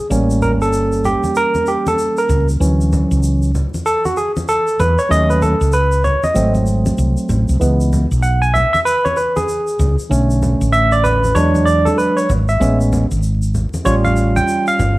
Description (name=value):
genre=hip hop, jazz-hop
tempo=96 BPM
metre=4/4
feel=swing 62% on 16ths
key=unclear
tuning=A4 = 440 Hz
part: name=barky tine electric piano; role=accompaniment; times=0.0-15.0 s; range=D3 to G#5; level=-15 LUFS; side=right 1 dB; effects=overdrive
part: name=woody fretless electric bass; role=bass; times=0.1-15.0 s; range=G1 to E2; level=-15 LUFS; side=equal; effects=none
part: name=tube shaker and congas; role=percussion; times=0.1-15.0 s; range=none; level=-25 LUFS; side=left 1 dB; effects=none
room=light reverb, studio reverb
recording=vinyl crackle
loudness=-13 LUFS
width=side -19 dB against mid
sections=0.0-15.0 A section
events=tine electric piano solo 0.0-15.0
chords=0.1 A7b9; 2.6 Dmaj9; 5.1 D#m7b5; 6.4 G#7b9; 7.6 C#m7; 10.1 Bm7; 11.4 E9; 12.6 Amaj7; 13.9 Aaug7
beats=| 0.10 0.73 1.35 1.98 | 2.60 3.23 3.85 4.48 | 5.10 5.73 6.35 6.98 | 7.60 8.23 8.85 9.48 | 10.10 10.73 11.35 11.98 | 12.60 13.23 13.85 14.48